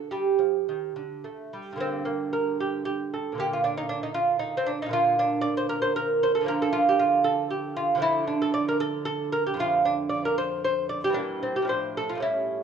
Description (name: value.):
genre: classical, baroque-style dance for lute.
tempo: 114 BPM.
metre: 3/4.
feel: rubato.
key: D minor from 8.0 s.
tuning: A4 = 439 Hz.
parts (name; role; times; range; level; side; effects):
lute; solo; 0.0-12.6 s; F2 to D5; -24 LUFS; right 2 dB; none.
room: moderate recital hall reverb, RT60 1.6 s.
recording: worn, warbling old tape, cassette tape, warbly pitch drift.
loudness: -23 LUFS.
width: side -7 dB against mid.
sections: 0.0-1.8 A section; 1.8-12.6 B section.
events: none.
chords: 0.1 G5; 1.8 Gm; 3.4 Bb; 6.5 Bb/D; 8.0 Dm; 9.6 Dm/F; 11.2 Edim/G; 11.7 Dm/A.